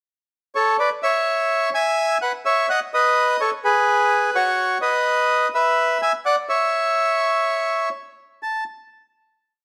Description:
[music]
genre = tango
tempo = 126 BPM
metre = 4/4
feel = rubato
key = unclear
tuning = A4 = 440 Hz
[part]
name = bandoneon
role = solo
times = 0.6-8.6 s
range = F#4 to A5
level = -20 LUFS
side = equal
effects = none
[sound]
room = wet stone room reverb, RT60 1.2 s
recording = band playing live in one room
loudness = -20 LUFS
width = mono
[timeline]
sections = 0.0-0.8 pickup bar; 0.8-8.4 A section; 8.4-9.6 final note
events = none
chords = 0.0 N.C.; 0.8 Bsus24; 1.7 E; 2.7 B7; 3.6 F#sus24; 4.6 B; 5.5 E5; 6.5 N.C.

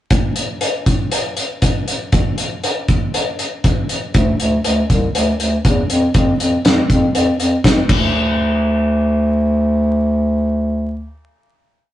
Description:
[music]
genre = quiet-loud alternative rock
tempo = 120 BPM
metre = 4/4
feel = straight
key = D minor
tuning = A4 = 441 Hz
[part]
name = loose indie drum kit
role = drums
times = 0.1-8.0 s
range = crash cymbal, hi-hat, kick drum, snare drum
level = -16 LUFS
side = equal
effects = none
[part]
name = mellow bass clarinet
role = bass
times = 4.1-11.2 s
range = C2 to F2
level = -16 LUFS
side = equal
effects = none
[sound]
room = moderate small room reverb, RT60 0.5 s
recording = rough rehearsal-room recording, vinyl crackle, nothing above 11.0 kHz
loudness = -14 LUFS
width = side -13 dB against mid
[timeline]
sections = 0.1-8.1 verse; 8.1-11.9 final hit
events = drum fill 7.9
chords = none

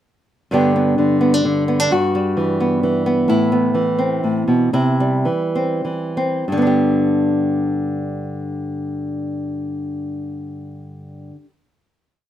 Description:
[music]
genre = folk, solo fingerstyle acoustic guitar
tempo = 91-131 BPM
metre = 3/4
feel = rubato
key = G major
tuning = A4 = 440 Hz
[part]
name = nylon-string guitar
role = solo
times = 0.5-11.5 s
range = G2 to G4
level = -17 LUFS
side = equal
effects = none
[sound]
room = light reverb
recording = minimal, uncompressed stereo recording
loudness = -16 LUFS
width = side -11 dB against mid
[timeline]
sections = 0.5-6.5 A section; 6.5-10.3 final chord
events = slowing down 3.3-6.5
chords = 0.5 G; 1.9 Emadd9/G; 3.3 Amadd9; 4.7 C; 6.5 G

